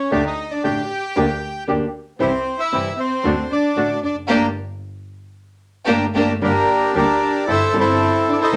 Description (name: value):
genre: tango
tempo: 114 BPM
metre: 4/4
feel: rubato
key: G minor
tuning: A4 = 440 Hz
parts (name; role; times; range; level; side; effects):
- bandoneon; melody; 0.0-8.6 s; D4 to G5; -22 LUFS; equal; none
- clear studio violin section; second line; 0.0-8.6 s; Bb3 to G4; -25 LUFS; equal; none
- nylon-string guitar; accompaniment; 0.1-8.6 s; C3 to A4; -24 LUFS; equal; none
- bandoneon; stabs; 0.1-8.6 s; A3 to Bb4; -30 LUFS; equal; none
- clear double bass; bass; 0.1-8.6 s; F1 to D2; -30 LUFS; equal; none
room: moderate studio reverb, RT60 0.6 s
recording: none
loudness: -19 LUFS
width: mono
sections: 0.0-6.4 A section; 6.4-8.6 B section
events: band accent 4.3-6.4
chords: 0.1 Dsus4; 1.2 Gm/D; 2.2 C; 3.2 D; 4.3 Gmadd9; 6.4 Gm; 7.5 C6/G